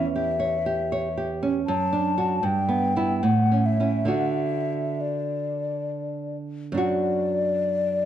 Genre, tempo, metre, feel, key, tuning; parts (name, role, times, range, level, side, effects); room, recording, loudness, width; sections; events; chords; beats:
romantic duo for flute and classical guitar; 65-80 BPM; 3/4; rubato; D major; A4 = 440 Hz
mellow hollow concert flute; melody; 0.0-8.1 s; D5 to A5; -26 LUFS; left 4 dB
nylon-string guitar; accompaniment; 0.0-8.1 s; E2 to C#5; -24 LUFS; right 3 dB
moderate recital hall reverb, RT60 1.5 s; dark, warm production; -22 LUFS; side -10 dB against mid
0.0-6.8 A section; 6.8-8.1 B section
0.0 C#dim/E; 1.7 D/F#; 2.4 Em/G; 3.2 A; 4.1 D
0.15 0.92 | 1.69 2.44 3.23 | 4.09 5.02 5.92 | 6.82 7.69